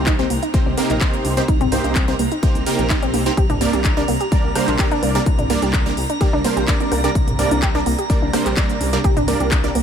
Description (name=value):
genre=progressive house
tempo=127 BPM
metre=4/4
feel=straight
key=unclear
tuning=A4 = 442 Hz
part: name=supersaw stab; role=stabs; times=0.0-9.7 s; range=C3 to D5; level=-21 LUFS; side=right 2 dB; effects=sidechain pumping, digital delay
part: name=dark detuned saw bass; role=bass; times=0.0-9.8 s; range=Bb1 to C2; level=-24 LUFS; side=left 1 dB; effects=sidechain pumping
part: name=drifting glass-harmonics texture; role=texture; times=0.0-9.8 s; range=Bb5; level=-31 LUFS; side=right 1 dB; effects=chorus, built-in reverb, sidechain pumping
part: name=glassy wavetable pluck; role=arpeggios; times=0.1-9.8 s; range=Bb3 to G4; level=-23 LUFS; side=equal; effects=chorus, sidechain pumping, digital delay
part: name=electronic kick drum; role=drums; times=0.1-9.6 s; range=none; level=-19 LUFS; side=left 1 dB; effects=studio reverb
part: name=house drum kit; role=drums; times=0.1-9.8 s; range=handclaps, hi-hat, rim click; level=-27 LUFS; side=left 1 dB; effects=sidechain pumping on hats, studio reverb
part: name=electronic congas and toms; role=percussion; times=0.7-9.5 s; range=none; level=-29 LUFS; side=right 2 dB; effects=sidechain pumping on toms, studio reverb, sidechain pumping on perc
room=little or no reverb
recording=none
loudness=-16 LUFS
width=side -8 dB against mid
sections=0.0-9.8 A section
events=filter sweep on synth arpeggio sound 0.0-9.8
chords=0.0 Cm7; 3.4 Gm